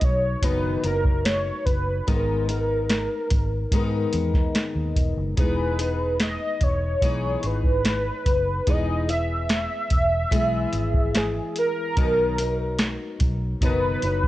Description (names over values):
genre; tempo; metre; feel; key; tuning
indie pop, bedroom pop; 73 BPM; 4/4; straight; E lydian; A4 = 443 Hz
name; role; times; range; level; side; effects
warm velvety synth lead; melody; 0.0-14.3 s; G#4 to E5; -25 LUFS; equal; analog chorus
fingerpicked steel-string acoustic guitar; accompaniment; 0.0-14.3 s; G#2 to A#4; -29 LUFS; left 4 dB; analog chorus, warbly pitch drift
vintage muted fingered electric bass; bass; 0.0-14.3 s; E1 to G#2; -27 LUFS; equal; none
soft vintage rhythm box; drums; 0.0-14.3 s; hi-hat, kick drum, snare drum; -23 LUFS; equal; vintage 12-bit sampler grit
room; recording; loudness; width
little or no reverb; dry, gritty hardware recording, cassette tape; -21 LUFS; side -15 dB against mid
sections
0.0-14.3 A section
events
none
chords
0.0 B; 2.1 G#madd9; 5.4 Emaj7; 12.0 Bmaj7